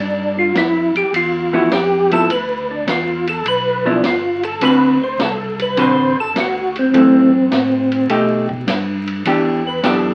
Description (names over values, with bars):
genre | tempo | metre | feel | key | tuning
soul jazz organ trio | 103 BPM | 4/4 | swing 69% on 8ths | unclear | A4 = 441 Hz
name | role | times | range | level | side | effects
percussive tonewheel organ | melody | 0.0-10.1 s | C4 to C5 | -19 LUFS | equal | chorus vibrato, slow rotary speaker
tonewheel organ | bass | 0.0-10.1 s | F#1 to B2 | -28 LUFS | equal | overdrive, chorus vibrato, slow rotary speaker
vintage drum kit | drums | 0.6-10.0 s | hi-hat, kick drum, ride cymbal, snare drum | -26 LUFS | equal | none
vintage hollow-body jazz guitar | accompaniment | 1.5-10.1 s | D3 to B4 | -17 LUFS | equal | none
room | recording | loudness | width
wet small room reverb, RT60 0.5 s | very old 78 rpm record, vinyl crackle | -16 LUFS | mono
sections
0.0-10.1 A section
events
tonewheel organ solo 0.0-10.1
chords
0.0 G6; 4.6 D6; 6.9 F#m7b5; 8.1 Baug7; 9.3 Em7